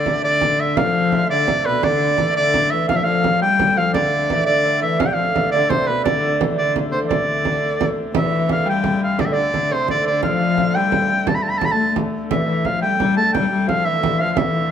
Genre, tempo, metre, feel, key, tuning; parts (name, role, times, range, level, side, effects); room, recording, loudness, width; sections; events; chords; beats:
medieval dance; 114 BPM (dotted quarters); 6/8; straight; D dorian; A4 = 440 Hz
bright shawm; melody; 0.0-14.7 s; B4 to B5; -19 LUFS; equal
concert harp; second line; 0.0-14.7 s; B4 to A5; -26 LUFS; right 7 dB
warm viola da gamba; second line; 0.0-14.7 s; B2 to A3; -22 LUFS; left 5 dB
warm hurdy-gurdy; drone; 0.0-14.7 s; D3 to A3; -28 LUFS; equal
frame drum; percussion; 0.1-14.6 s; -24 LUFS; right 5 dB
wet large studio reverb, RT60 1.5 s; band playing live in one room; -16 LUFS; side -8 dB against mid
0.0-8.1 A section; 8.1-14.7 B section
speeding up 0.0-14.7
0.23 | 0.76 1.29 | 1.82 2.35 | 2.88 3.41 | 3.94 4.47 | 4.99 5.52 | 6.05 6.57 | 7.10 7.62 | 8.14 8.67 | 9.19 9.71 | 10.23 10.75 | 11.27 11.79 | 12.30 12.82 | 13.34 13.85 | 14.37